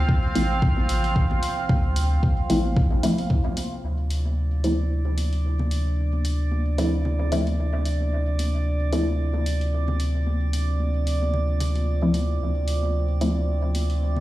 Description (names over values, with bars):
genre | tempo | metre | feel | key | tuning
dub techno | 112 BPM | 4/4 | swing 56% on 16ths | D minor | A4 = 441 Hz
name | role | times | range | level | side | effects
deep dark ambient pad | sustained chords | 0.0-14.2 s | C4 to F5 | -31 LUFS | right 1 dB | chorus, built-in reverb, sidechain pumping
warm sub bass | bass | 0.0-14.2 s | A1 to D2 | -23 LUFS | equal | sidechain pumping
electronic kick drum | drums | 0.1-3.4 s | none | -20 LUFS | equal | none
filtered dub chord stab | stabs | 0.4-13.4 s | F3 to E4 | -27 LUFS | left 1 dB | chorus, phaser, cassette tape, dub echo
electronic hi-hat | drums | 0.4-14.0 s | none | -36 LUFS | left 1 dB | none
congas | percussion | 0.4-14.2 s | none | -35 LUFS | left 2 dB | overdrive, sidechain pumping on perc, dub echo
drifting glass-harmonics texture | texture | 4.3-14.2 s | D5 | -34 LUFS | right 5 dB | chorus, built-in reverb, sidechain pumping
room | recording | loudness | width
light reverb | played on a big sound system in a bare room, large studio reverb | -21 LUFS | side -16 dB against mid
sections
0.0-3.8 A section; 3.8-14.2 B section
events
filter sweep on synth stab 0.0-3.8, 3.8-14.2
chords
0.0 Dm7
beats
0.09 0.62 1.16 | 1.69 2.23 2.77 3.30 | 3.84 4.37 4.91 5.44 | 5.98 6.52 7.05 7.59 | 8.12 8.66 9.19 9.73 | 10.27 10.80 11.34 11.87 | 12.41 12.94 13.48 14.02